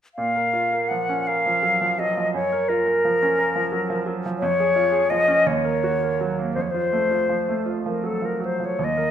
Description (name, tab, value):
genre	classical, romantic duo for flute and grand piano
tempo	52-60 BPM (dotted quarters)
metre	6/8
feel	rubato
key	Bb minor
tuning	A4 = 440 Hz
part	bright concert flute	melody	0.1-9.1 s	A4 to Gb5	-21 LUFS	left 2 dB	none
part	bright concert grand piano	accompaniment	0.2-9.1 s	Eb2 to Bb4	-25 LUFS	right 5 dB	none
room	moderate recital hall reverb, RT60 1.2 s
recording	none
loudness	-20 LUFS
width	side -9 dB against mid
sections	0.2-9.1 A section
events	none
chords	0.2 Bbm; 2.4 Gbmaj7; 4.4 Db/F; 5.5 Ebm; 6.6 F